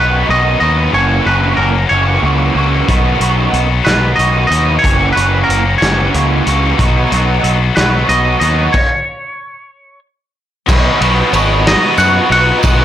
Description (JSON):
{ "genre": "indie rock", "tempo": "62 BPM (dotted quarters)", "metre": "6/8", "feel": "straight", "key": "B major", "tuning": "A4 = 440 Hz", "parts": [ { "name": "twangy electric guitar", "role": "melody", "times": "0.0-12.8 s", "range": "A#4 to F#5", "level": "-15 LUFS", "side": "equal", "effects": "slapback echo" }, { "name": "high-gain distorted guitar", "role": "riff", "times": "0.0-12.8 s", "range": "F#2 to B4", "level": "-18 LUFS", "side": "left 10 dB", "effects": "distortion" }, { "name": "raw garage guitar", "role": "riff", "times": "0.0-12.8 s", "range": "D#3 to F#4", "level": "-17 LUFS", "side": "right 6 dB", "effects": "overdrive, ensemble chorus, slapback echo" }, { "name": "growling picked electric bass", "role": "bass", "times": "0.0-12.8 s", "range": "F#1 to F#2", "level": "-15 LUFS", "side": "equal", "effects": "overdrive" }, { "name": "loose indie drum kit", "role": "drums", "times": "2.9-12.8 s", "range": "crash cymbal, hi-hat, kick drum, ride cymbal, snare drum", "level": "-16 LUFS", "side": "equal", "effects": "none" }, { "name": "overdriven combo organ", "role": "sustained chords", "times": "10.7-12.8 s", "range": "B4 to D#6", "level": "-26 LUFS", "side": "equal", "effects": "none" }, { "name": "tambourine", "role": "percussion", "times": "10.7-12.8 s", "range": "none", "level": "-29 LUFS", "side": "right 16 dB", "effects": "none" } ], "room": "little or no reverb", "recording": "blown-out, overdriven recording, overdrive", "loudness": "-10 LUFS", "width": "side -11 dB against mid", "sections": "0.0-10.7 A section; 10.7-12.8 B section", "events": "stop 8.7-10.7", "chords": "0.0 B; 0.9 F#7; 2.9 B; 4.8 F#7; 6.8 B; 8.7 N.C.; 10.7 Bmaj7", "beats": "| 0.94 1.91 | 2.89 3.86 | 4.84 5.81 | 6.79 7.76 | 8.74 9.71 | 10.68 11.66 | 12.63" }